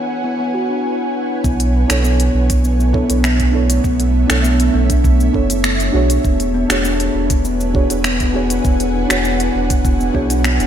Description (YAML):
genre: organic downtempo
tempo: 100 BPM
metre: 4/4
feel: straight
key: B dorian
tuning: A4 = 440 Hz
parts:
  - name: muted felt-like synth keys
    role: accompaniment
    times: 0.0-10.7 s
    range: E3 to C#5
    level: -23 LUFS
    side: right 4 dB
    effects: chorus, sidechain pumping, digital delay
  - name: ethereal airy pad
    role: sustained chords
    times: 0.0-10.7 s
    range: A3 to G#5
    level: -23 LUFS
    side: right 1 dB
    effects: ensemble chorus, built-in reverb, sidechain pumping
  - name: afro-pop drum kit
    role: drums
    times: 0.1-10.7 s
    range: finger snaps, hi-hat, shaker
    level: -21 LUFS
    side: equal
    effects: low-pass filter on perc, studio reverb, low-pass filter on hats, low-pass filter on snare, gated reverb
  - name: steel tongue drum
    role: arpeggios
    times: 0.2-10.6 s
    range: B3 to F#4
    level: -20 LUFS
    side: left 3 dB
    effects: digital delay
  - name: warm sub bass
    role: bass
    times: 1.4-10.7 s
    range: E1 to B1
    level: -17 LUFS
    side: right 1 dB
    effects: tube saturation, sidechain pumping
  - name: electronic kick drum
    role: drums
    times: 1.4-10.3 s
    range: none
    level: -17 LUFS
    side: right 1 dB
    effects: studio reverb
room: light reverb, digital ambience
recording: bright 1980s-style digital production, low-pass filter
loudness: -13 LUFS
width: side -9 dB against mid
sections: 0.0-1.4 A section; 1.4-10.7 B section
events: filter sweep on steel tongue drum 0.0-1.4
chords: 0.0 E13; 1.4 Bm11; 6.2 E13